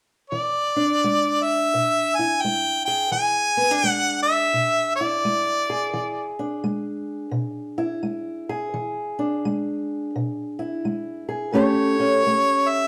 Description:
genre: acoustic country blues, solo or duo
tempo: 85 BPM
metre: 4/4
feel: swing 63% on 8ths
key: E mixolydian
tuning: A4 = 440 Hz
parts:
  - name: warm harmonica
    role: melody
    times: 0.3-6.3, 11.5-12.9 s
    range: C#5 to G#5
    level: -22 LUFS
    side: equal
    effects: none
  - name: fingerpicked old ladder-braced acoustic guitar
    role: accompaniment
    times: 0.3-12.9 s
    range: A2 to A4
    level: -27 LUFS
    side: equal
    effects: none
room: moderate large studio reverb, RT60 0.8 s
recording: band playing live in one room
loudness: -23 LUFS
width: mono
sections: 0.3-12.9 A section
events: none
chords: 0.3 E7; 11.5 A7

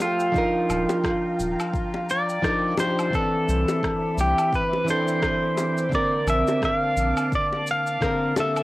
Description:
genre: sunset chillout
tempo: 86 BPM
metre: 4/4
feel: swing 57% on 16ths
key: unclear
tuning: A4 = 439 Hz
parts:
  - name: pedal steel guitar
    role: melody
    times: 0.0-8.6 s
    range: F4 to F5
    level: -24 LUFS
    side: equal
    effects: cassette tape, tape echo
  - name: nylon-string guitar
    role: accompaniment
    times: 0.0-8.6 s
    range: D3 to E5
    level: -26 LUFS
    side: equal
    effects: auto-pan, cassette tape
  - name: soft string machine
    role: sustained chords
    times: 0.0-8.6 s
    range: C4 to E6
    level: -33 LUFS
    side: equal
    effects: ensemble chorus, cassette tape
  - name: electronic cabasa, woodblock and rim click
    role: drums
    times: 0.0-8.6 s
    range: none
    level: -32 LUFS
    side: equal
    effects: cassette tape
  - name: bongos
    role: percussion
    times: 0.0-8.5 s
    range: none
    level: -30 LUFS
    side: left 3 dB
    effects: none
  - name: electronic kick drum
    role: drums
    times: 0.3-8.2 s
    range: none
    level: -30 LUFS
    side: equal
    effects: cassette tape
  - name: round analog bass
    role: bass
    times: 0.7-7.1 s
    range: Eb1 to C2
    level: -25 LUFS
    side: equal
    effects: none
room: moderate studio reverb, RT60 0.5 s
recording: home recording on cassette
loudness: -21 LUFS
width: side -18 dB against mid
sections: 0.0-8.6 A section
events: none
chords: 0.3 Ebmaj9; 3.1 Cmaj9; 5.9 Bbmaj9

